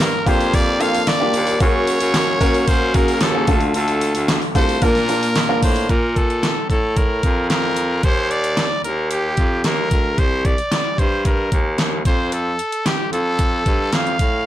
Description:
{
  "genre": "piano-driven pop",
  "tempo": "112 BPM",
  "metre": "4/4",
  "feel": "straight",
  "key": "Bb major",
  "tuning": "A4 = 440 Hz",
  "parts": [
    { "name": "growling trumpet", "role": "melody", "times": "0.0-14.5 s", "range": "G4 to F5", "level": "-22 LUFS", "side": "equal", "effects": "none" },
    { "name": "clear concert grand piano", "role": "accompaniment", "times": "0.0-5.9 s", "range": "G2 to Bb4", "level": "-20 LUFS", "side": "left 1 dB", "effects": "none" },
    { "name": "breathy baritone saxophone", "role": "bass", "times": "0.0-14.4 s", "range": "C2 to Bb2", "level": "-21 LUFS", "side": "equal", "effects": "none" },
    { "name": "pop drum kit", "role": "drums", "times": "0.0-14.3 s", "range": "handclaps, hi-hat, kick drum, snare drum", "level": "-19 LUFS", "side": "equal", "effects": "none" }
  ],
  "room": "light reverb",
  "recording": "blown-out, overdriven recording, overdrive",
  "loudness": "-16 LUFS",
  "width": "side -13 dB against mid",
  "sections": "0.0-5.9 A section; 5.9-14.5 B section",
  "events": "none",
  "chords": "0.0 Gm7; 1.6 Gbadd9; 3.5 Dm; 4.8 Bb; 5.9 Bb5; 8.0 Ebmaj7; 10.2 Cm7; 12.1 F"
}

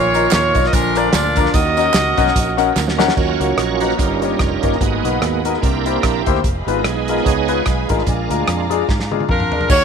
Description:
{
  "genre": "uptempo gospel",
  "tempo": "147 BPM",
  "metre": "4/4",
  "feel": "swing 57% on 8ths",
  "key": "Eb minor",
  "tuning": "A4 = 441 Hz",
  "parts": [
    { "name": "bright saxophone section", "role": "melody", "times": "0.0-3.0, 9.3-9.8 s", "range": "D4 to Eb5", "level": "-17 LUFS", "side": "right 1 dB", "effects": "slapback echo" },
    { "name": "warm grand piano", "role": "accompaniment", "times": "0.0-9.8 s", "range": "G2 to Bb5", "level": "-20 LUFS", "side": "left 12 dB", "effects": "none" },
    { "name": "bright tonewheel organ", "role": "sustained chords", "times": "0.0-8.7 s", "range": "D3 to Db5", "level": "-21 LUFS", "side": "right 10 dB", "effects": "slow rotary speaker, overdrive, chorus vibrato" },
    { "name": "fingered electric bass", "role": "bass", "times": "0.0-9.8 s", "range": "F1 to Ab2", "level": "-23 LUFS", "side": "right 1 dB", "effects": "none" },
    { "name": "warm soul drum kit", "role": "drums", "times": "0.1-9.8 s", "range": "crash cymbal, hi-hat, kick drum, rim click, snare drum, toms", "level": "-20 LUFS", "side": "right 1 dB", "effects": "none" },
    { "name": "tambourine and handclaps", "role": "percussion", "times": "0.1-3.1, 9.7-9.8 s", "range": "none", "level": "-28 LUFS", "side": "right 16 dB", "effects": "none" },
    { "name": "clear studio string section", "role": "sustained chords", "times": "3.2-9.7 s", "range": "Db5 to C6", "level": "-28 LUFS", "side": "equal", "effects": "none" }
  ],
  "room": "moderate plate reverb, RT60 2.2 s",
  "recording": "1960s-style stereo with parts hard left and right",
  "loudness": "-14 LUFS",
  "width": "side -6 dB against mid",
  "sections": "0.0-3.2 A section; 3.2-9.7 B section",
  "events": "drum fill 2.8-3.2, 8.9-9.7; tonewheel organ solo 3.2-9.7",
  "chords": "0.0 Bbsus4; 0.7 Bb; 1.5 Ebm7; 4.0 Eb7/G; 4.8 Abm7; 5.6 C7; 6.4 Fm7b5; 8.1 Bb7"
}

